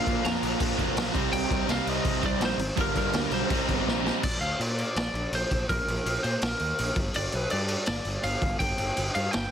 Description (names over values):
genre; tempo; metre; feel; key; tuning
punk rock; 165 BPM; 4/4; straight; unclear; A4 = 440 Hz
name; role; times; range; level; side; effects
lightly driven lead guitar; melody; 0.0-9.5 s; Bb4 to Bb5; -31 LUFS; equal; ping-pong delay
distorted electric guitar; riff; 0.0-4.2 s; G2 to Eb4; -31 LUFS; left 17 dB; overdrive
overdriven semi-hollow guitar; riff; 0.0-4.2 s; G2 to C4; -30 LUFS; right 18 dB; none
fuzz picked electric bass; bass; 0.1-9.5 s; F1 to Bb2; -32 LUFS; equal; overdrive
raw garage drum kit; drums; 0.1-9.4 s; crash cymbal, kick drum, snare drum; -29 LUFS; equal; none
room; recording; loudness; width
little or no reverb; dense, heavily limited modern master; -25 LUFS; side -9 dB against mid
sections
0.0-4.2 A section; 4.2-9.5 B section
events
drum fill 3.9-4.2; half time 4.2-9.5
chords
0.0 Bb; 1.1 Cm; 2.8 Gm; 3.5 Cm; 4.2 Bb; 7.0 G5